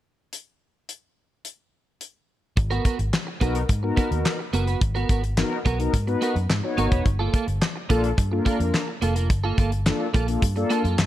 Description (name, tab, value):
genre	early-eighties boogie funk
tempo	107 BPM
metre	4/4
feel	straight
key	unclear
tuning	A4 = 436 Hz
part	damped 70s drum kit	drums	0.3-11.1 s	handclaps, hi-hat, kick drum, snare drum	-23 LUFS	equal	gated reverb
part	clean electric guitar	riff	2.6-11.0 s	Bb3 to B4	-28 LUFS	right 4 dB	analog chorus
part	vintage muted fingered electric bass	bass	2.6-11.1 s	E1 to G#2	-25 LUFS	equal	none
part	mellow synth brass	accompaniment	3.4-10.8 s	Bb3 to C#5	-27 LUFS	left 3 dB	chorus
room	studio ambience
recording	none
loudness	-21 LUFS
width	side -13 dB against mid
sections	0.3-2.6 A section; 2.6-11.1 B section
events	none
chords	0.3 N.C.; 2.6 G#m9; 7.1 Gm9